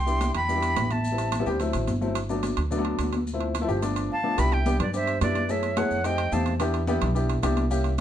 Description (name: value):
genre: Afro-Cuban jazz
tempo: 216 BPM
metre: 4/4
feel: straight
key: G major, C major from 4.4 s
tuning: A4 = 441 Hz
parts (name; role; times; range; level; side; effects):
- bright reedy jazz flute; melody; 0.0-1.5, 4.1-6.5 s; D5 to C6; -28 LUFS; equal; plate reverb
- mellow hollow jazz flute; second line; 0.0-1.5, 4.1-6.5 s; B4 to G5; -33 LUFS; right 5 dB; none
- upright bass; bass; 0.0-8.0 s; G1 to G2; -27 LUFS; right 1 dB; none
- warm baby grand piano; accompaniment; 0.1-7.9 s; F3 to G#4; -28 LUFS; left 2 dB; none
- congas; percussion; 0.1-8.0 s; none; -33 LUFS; left 1 dB; none
- maracas; percussion; 0.1-8.0 s; none; -44 LUFS; left 3 dB; none
- timbales; percussion; 0.2-8.0 s; none; -34 LUFS; right 10 dB; none
room: moderate studio reverb, RT60 0.6 s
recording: dark, warm production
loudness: -23 LUFS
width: side -10 dB against mid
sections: 0.0-4.4 A section; 4.4-8.0 B section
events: none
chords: 0.0 Am7; 1.6 D7; 2.2 Gmaj7; 3.3 Dm7; 3.8 G7; 4.4 Cmaj9; 5.5 F#m11; 6.0 F9; 6.6 Em7